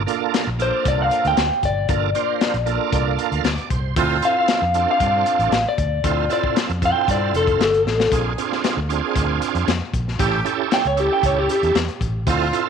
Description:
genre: straight-eighth soul blues.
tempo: 116 BPM.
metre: 4/4.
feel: straight.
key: D minor.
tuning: A4 = 442 Hz.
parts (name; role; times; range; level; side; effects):
bright tonewheel organ; accompaniment; 0.0-12.7 s; Bb3 to F5; -23 LUFS; right 15 dB; slow rotary speaker, overdrive, chorus vibrato.
vintage muted fingered electric bass; bass; 0.0-12.5 s; F1 to G2; -24 LUFS; equal; none.
crunchy breakbeat drum kit; drums; 0.1-12.7 s; hi-hat, kick drum, snare drum; -24 LUFS; left 4 dB; none.
electric guitar through a small old amp; melody; 0.6-11.8 s; G4 to G5; -20 LUFS; left 2 dB; spring reverb, slapback echo.
clear horn section; sustained chords; 4.0-12.7 s; A3 to Ab4; -28 LUFS; right 2 dB; none.
room: light reverb, small room ambience.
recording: 1960s-style stereo.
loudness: -17 LUFS.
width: side -7 dB against mid.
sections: 0.0-12.7 A section.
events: clean electric guitar solo 0.0-12.7; tonewheel organ fill 2.9-4.0; drum fill 7.9.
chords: 0.0 Gm7; 4.0 Dm7; 8.1 Bb7; 10.2 A7.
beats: 0.34 0.86 1.38 | 1.90 2.41 2.93 3.45 | 3.97 4.49 5.01 5.53 | 6.04 6.56 7.08 7.60 | 8.12 8.64 9.16 9.68 | 10.20 10.71 11.23 11.75 | 12.27.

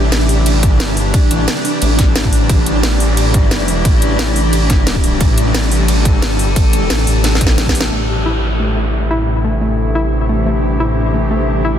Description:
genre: dark technical drum and bass.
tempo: 177 BPM.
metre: 4/4.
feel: straight.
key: A minor.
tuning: A4 = 439 Hz.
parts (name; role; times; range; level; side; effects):
metallic inharmonic drone; sustained chords; 0.0-11.8 s; C3 to A4; -20 LUFS; left 2 dB; chorus, built-in reverb, sidechain pumping.
wide detuned saw bass; bass; 0.0-11.8 s; A1; -16 LUFS; equal; chorus, overdrive, sidechain pumping.
granular cloud pad; texture; 0.0-11.8 s; D4 to E5; -22 LUFS; equal; built-in reverb, sidechain pumping.
drum and bass drum kit; drums; 0.1-7.9 s; hi-hat, ride cymbal, snare drum; -19 LUFS; equal; none.
electronic kick drum; drums; 0.6-7.7 s; none; -13 LUFS; equal; none.
warbly dusty pluck; arpeggios; 7.9-11.7 s; A3 to E4; -21 LUFS; left 1 dB; chorus, sidechain pumping, ping-pong delay.
downlifter; sound effects; 7.9-10.6 s; none; -26 LUFS; equal; none.
room: light reverb, digital ambience.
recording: dense, heavily limited modern master.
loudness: -12 LUFS.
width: side -9 dB against mid.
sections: 0.0-7.9 A section; 7.9-11.8 B section.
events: drop 0.0-7.9; drum fill 7.2-7.9; band accent 7.8; filter sweep on synth drone 7.9-11.8.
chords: 0.0 Am.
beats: 0.12 0.46 0.80 | 1.14 1.48 1.82 2.16 | 2.50 2.83 3.17 3.51 | 3.85 4.19 4.53 4.87 | 5.21 5.54 5.88 6.22 | 6.56 6.90 7.24 7.58 | 7.92 8.26 8.60 8.94 | 9.27 9.61 9.95 10.29 | 10.63 10.97 11.31 11.65.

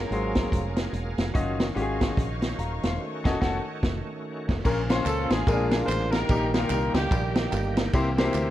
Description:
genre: uptempo gospel.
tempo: 146 BPM.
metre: 4/4.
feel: swing 60% on 8ths.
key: unclear.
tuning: A4 = 441 Hz.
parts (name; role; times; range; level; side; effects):
warm horn section; melody; 0.0-1.2, 5.1-7.9 s; Bb3 to C5; -30 LUFS; equal; none.
bright tonewheel organ; sustained chords; 0.0-8.5 s; Db3 to F5; -34 LUFS; right 2 dB; slow rotary speaker, overdrive, chorus vibrato.
clear studio string section; sustained chords; 0.0-4.6 s; Db5 to Db6; -42 LUFS; left 1 dB; none.
fingered electric bass; bass; 0.0-8.5 s; Eb1 to D2; -30 LUFS; equal; none.
bright concert grand piano; accompaniment; 0.1-8.5 s; Bb2 to Bb5; -28 LUFS; left 3 dB; none.
swinging big-band drum kit; drums; 0.1-8.5 s; crash cymbal, hi-hat, kick drum, ride cymbal, snare drum; -27 LUFS; equal; none.
tambourine and handclaps; percussion; 4.6-8.5 s; none; -42 LUFS; right 5 dB; none.
room: little or no reverb.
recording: worn, warbling old tape, cassette tape, warbly pitch drift.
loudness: -23 LUFS.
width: side -13 dB against mid.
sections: 0.0-4.6 A section; 4.6-8.5 B section.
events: band accent 3.0-4.6.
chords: 0.0 Gbmaj9; 1.4 Ebm9/Gb; 3.0 F7b9b13; 4.6 Bbm; 5.5 Bb7; 6.3 Eb/Bb; 7.9 C7.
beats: 0.11 0.53 0.94 | 1.35 1.76 2.18 2.59 | 3.00 3.41 3.83 4.24 | 4.65 5.06 5.47 5.88 | 6.29 6.71 7.12 7.53 | 7.94 8.35.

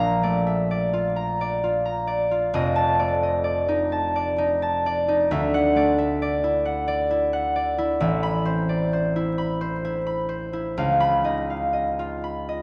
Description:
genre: classical, solo harp piece.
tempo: 44 BPM (dotted quarters).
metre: 6/8.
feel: rubato.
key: unclear.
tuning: A4 = 440 Hz.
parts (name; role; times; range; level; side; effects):
concert harp; solo; 0.0-12.6 s; F1 to B5; -23 LUFS; equal; none.
room: moderate concert hall reverb, RT60 1.9 s.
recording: vinyl crackle, nothing above 10.7 kHz.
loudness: -23 LUFS.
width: mono.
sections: 0.0-12.6 A section.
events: none.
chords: 0.0 Bbmaj7; 2.6 F6; 5.3 Dadd9; 8.0 Amadd9; 10.8 Db9.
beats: 1.19 | 2.56 3.94 | 5.31 6.67 | 8.02 9.38 | 10.77 12.24.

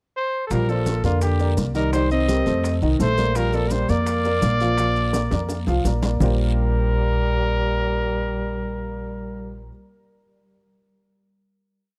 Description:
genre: Afro-Cuban jazz.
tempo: 168 BPM.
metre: 4/4.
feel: straight.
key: Bb major.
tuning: A4 = 440 Hz.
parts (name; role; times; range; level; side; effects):
clear trumpet; melody; 0.2-9.7 s; F4 to Eb5; -28 LUFS; equal; none.
breathy tenor saxophone; second line; 0.5-9.7 s; D3 to C4; -30 LUFS; equal; none.
warm upright piano; accompaniment; 0.5-9.7 s; Eb3 to F5; -29 LUFS; equal; none.
upright bass; bass; 0.5-9.7 s; Bb1 to F2; -25 LUFS; equal; none.
bongos; percussion; 0.5-6.3 s; none; -36 LUFS; equal; none.
congas; percussion; 0.5-6.3 s; none; -31 LUFS; equal; none.
guiro; percussion; 0.5-6.3 s; none; -44 LUFS; equal; none.
maracas; percussion; 0.5-6.3 s; none; -43 LUFS; equal; none.
room: light reverb, small room reverb.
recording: dry, close 1970s-style studio recording.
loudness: -22 LUFS.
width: mono.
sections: 0.0-0.5 pickup bar; 0.5-6.2 A section; 6.2-9.1 final chord.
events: drum fill 5.1-6.2.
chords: 0.0 N.C.; 0.5 Bb69; 1.9 Cm7; 2.6 F7; 3.4 Bb; 6.2 Bb69.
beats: 0.15 | 0.51 0.86 1.22 1.57 | 1.93 2.29 2.64 3.00 | 3.36 3.71 4.07 4.43 | 4.78 5.14 5.50 5.85 | 6.21 6.56 6.92 7.27 | 7.63 7.99 8.34 8.70.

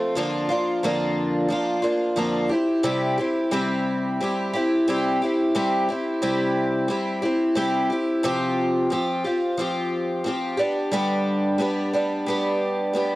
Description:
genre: rock.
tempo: 89 BPM.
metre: 4/4.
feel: straight.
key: unclear.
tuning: A4 = 441 Hz.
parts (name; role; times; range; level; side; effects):
picked twelve-string acoustic guitar; solo; 0.0-13.2 s; F2 to G4; -21 LUFS; equal; cassette tape.
room: moderate spring reverb, RT60 1.6 s, small room ambience.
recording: home recording on cassette.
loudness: -21 LUFS.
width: side -18 dB against mid.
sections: 0.0-8.2 A section; 8.2-13.2 B section.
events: none.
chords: 0.2 Bb/F; 2.5 C; 8.2 Csus4; 10.6 G.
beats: | 0.17 0.84 1.51 2.18 | 2.85 3.53 4.20 4.87 | 5.54 6.22 6.89 7.57 | 8.24 8.91 9.59 10.27 | 10.94 11.61 12.29 12.96.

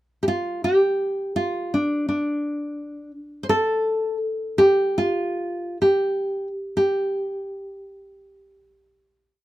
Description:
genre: chinese traditional.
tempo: 58-86 BPM.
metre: 2/4.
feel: rubato.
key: unclear.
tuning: A4 = 440 Hz.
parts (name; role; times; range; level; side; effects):
nylon-string guitar; solo; 0.2-9.4 s; D4 to C5; -21 LUFS; equal; none.
room: light reverb.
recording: close, detailed microphones.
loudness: -20 LUFS.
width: side -15 dB against mid.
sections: 0.0-0.7 pickup bar; 0.7-6.8 A section; 6.8-9.4 final note.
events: slowing down 3.5-6.8.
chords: none.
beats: | 0.66 1.38 | 2.10 2.80 | 3.50 4.21 | 4.97 5.80 | 6.75 7.77 | 8.76.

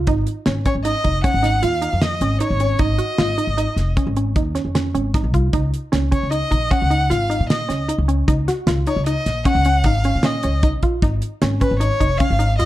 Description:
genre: progressive instrumental, band music in an uneven meter.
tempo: 153 BPM.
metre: 7/4.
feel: straight.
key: Db major.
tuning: A4 = 440 Hz.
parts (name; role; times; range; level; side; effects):
upright bass; bass; 0.0-12.7 s; F1 to Bb2; -20 LUFS; equal; none.
resonant blip pluck; arpeggios; 0.1-12.7 s; Db4 to Gb4; -23 LUFS; right 2 dB; chorus.
damped 70s drum kit; drums; 0.1-12.7 s; hi-hat, kick drum, snare drum; -21 LUFS; equal; none.
rich violin; melody; 0.7-12.7 s; Cb5 to Gb5; -22 LUFS; left 1 dB; plate reverb.
room: light reverb.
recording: dark, warm production.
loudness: -16 LUFS.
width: side -15 dB against mid.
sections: 0.0-12.7 A section.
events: none.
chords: 0.1 Ab5; 5.5 Dbsus2; 11.0 Ab5.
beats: | 0.07 0.46 0.85 1.24 1.63 2.02 2.41 | 2.80 3.19 3.58 3.98 4.37 4.76 5.15 | 5.54 5.93 6.32 6.71 7.11 7.50 7.89 | 8.28 8.67 9.06 9.46 9.85 10.24 10.63 | 11.03 11.42 11.81 12.20 12.60.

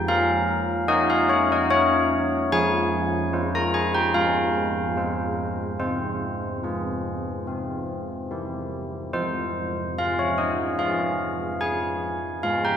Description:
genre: classical, tune for church bells.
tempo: 73 BPM.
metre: 4/4.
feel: straight.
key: F minor.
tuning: A4 = 439 Hz.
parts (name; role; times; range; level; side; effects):
old church bells; solo; 0.0-12.8 s; F3 to Bb5; -22 LUFS; equal; none.
room: wet concert hall reverb, RT60 1.9 s.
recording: none.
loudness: -22 LUFS.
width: side -8 dB against mid.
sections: 0.0-12.8 A section.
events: none.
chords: 0.0 Bbm/F; 2.5 Fm; 4.1 Fm/Ab; 5.8 Fm/C; 7.5 C; 9.1 Fm.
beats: 0.08 0.89 1.70 | 2.52 3.32 4.13 4.94 | 5.77 6.61 7.46 8.30 | 9.13 9.96 10.78 11.60 | 12.42.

